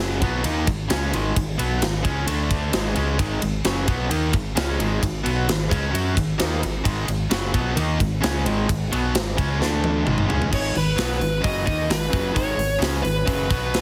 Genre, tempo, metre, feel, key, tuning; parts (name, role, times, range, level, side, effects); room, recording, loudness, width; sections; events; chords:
hard rock; 131 BPM; 4/4; straight; G# minor; A4 = 440 Hz
cranked stack guitar; riff; 0.0-13.8 s; F#2 to F#4; -29 LUFS; equal; overdrive
crunchy overdriven guitar; riff; 0.0-13.8 s; F#2 to F#4; -31 LUFS; equal
growling fingered electric bass; bass; 0.0-13.8 s; F#1 to F#2; -28 LUFS; equal; overdrive
tight metal drum kit; drums; 0.2-13.8 s; crash cymbal, hi-hat, kick drum, ride cymbal, snare drum, toms; -27 LUFS; equal
high-gain lead guitar; melody; 10.5-13.8 s; B4 to D#5; -28 LUFS; equal; distortion, plate reverb
light reverb; heavily compressed radio sound, multiband compression; -22 LUFS; mono
0.0-10.5 A section; 10.5-13.8 B section
drum fill 9.6-10.5
0.0 G#m; 2.3 D5; 2.7 G#m; 9.6 D5; 10.1 G#5; 10.5 G#m